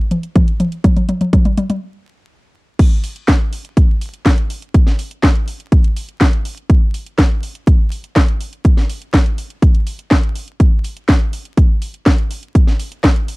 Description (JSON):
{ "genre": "italo disco", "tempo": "123 BPM", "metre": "4/4", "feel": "straight", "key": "none", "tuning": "none", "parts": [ { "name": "house drum kit", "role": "drums", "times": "0.1-13.4 s", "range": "crash cymbal, handclaps, hi-hat, snare drum, toms", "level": "-18 LUFS", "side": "equal", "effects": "overdrive" }, { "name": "electronic kick drum", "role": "drums", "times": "0.4-13.1 s", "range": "none", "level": "-12 LUFS", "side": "equal", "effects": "overdrive" } ], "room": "little or no reverb", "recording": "dry, close 1970s-style studio recording, vinyl crackle", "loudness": "-13 LUFS", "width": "side -24 dB against mid", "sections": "0.0-2.8 A section; 2.8-13.4 B section", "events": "drum fill 0.0-1.8; stop 1.8-2.8", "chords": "none" }